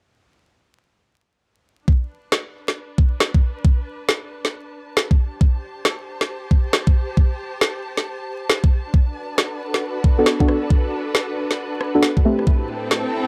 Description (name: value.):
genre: UK garage, two-step garage.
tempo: 136 BPM.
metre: 4/4.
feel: swing 64% on 16ths.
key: B phrygian.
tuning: A4 = 440 Hz.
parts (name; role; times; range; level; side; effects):
electronic kick drum; drums; 1.9-12.6 s; none; -18 LUFS; equal; overdrive.
warm studio string section; texture; 1.9-13.3 s; C4 to A5; -34 LUFS; equal; sidechain pumping.
electronic snare drum and rim click; drums; 2.3-13.0 s; none; -21 LUFS; equal; overdrive.
soft string machine; sustained chords; 8.9-13.3 s; A2 to B4; -30 LUFS; equal; ensemble chorus, sidechain pumping.
deep mellow chord stab; stabs; 10.2-12.4 s; A3 to A4; -21 LUFS; equal; chorus, phaser, tape echo.
room: little or no reverb.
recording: dry, gritty hardware recording, vinyl crackle.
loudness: -20 LUFS.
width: mono.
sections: 1.9-13.3 A section.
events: fade-in on string section 1.9-13.3.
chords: 1.9 Bm7; 5.2 Am7; 8.9 Bm7; 12.2 Am7.